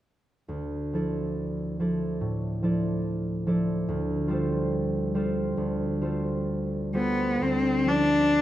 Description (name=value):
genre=classical, impressionist duo for cello and harp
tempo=61-72 BPM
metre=4/4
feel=rubato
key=D minor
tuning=A4 = 439 Hz
part: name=concert harp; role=accompaniment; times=0.5-8.4 s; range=D2 to D5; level=-26 LUFS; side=equal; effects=none
part: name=clear cello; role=melody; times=7.0-8.4 s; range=B3 to D4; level=-23 LUFS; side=left 1 dB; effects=none
room=moderate scoring stage reverb, RT60 2.1 s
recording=none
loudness=-25 LUFS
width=side -13 dB against mid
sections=0.5-7.4 A section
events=none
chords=0.5 Dmadd9; 3.9 F69/D; 7.4 Dmadd9